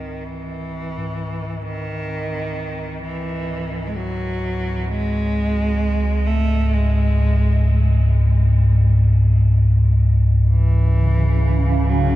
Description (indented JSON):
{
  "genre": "dark ambient drone",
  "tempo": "free time",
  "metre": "none",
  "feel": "none",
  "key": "C# harmonic minor",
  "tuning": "A4 = 440 Hz",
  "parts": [
    { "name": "rich cello", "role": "melody", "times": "0.0-12.2 s", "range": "D#3 to A3", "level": "-25 LUFS", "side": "right 1 dB", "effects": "tape echo" },
    { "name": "bronze singing bowl", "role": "arpeggios", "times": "0.0-6.5 s", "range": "G#2 to B#3", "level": "-32 LUFS", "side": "left 1 dB", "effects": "tape echo" },
    { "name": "deep rumbling drone", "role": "drone", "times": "0.0-12.2 s", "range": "C#2 to G#2", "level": "-17 LUFS", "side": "equal", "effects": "built-in reverb" },
    { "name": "granular cloud pad", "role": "sustained chords", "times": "10.9-12.2 s", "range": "C#3", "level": "-22 LUFS", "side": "right 3 dB", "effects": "built-in reverb" }
  ],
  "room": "light reverb, small room ambience",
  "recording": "cassette tape",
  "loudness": "-16 LUFS",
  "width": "side -15 dB against mid",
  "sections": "0.0-12.2 A section",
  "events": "fade-in on singing bowl 0.0-12.2; fade-in on cello 0.0-12.2; filter sweep on synth drone 0.0-12.2",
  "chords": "0.0 C#m"
}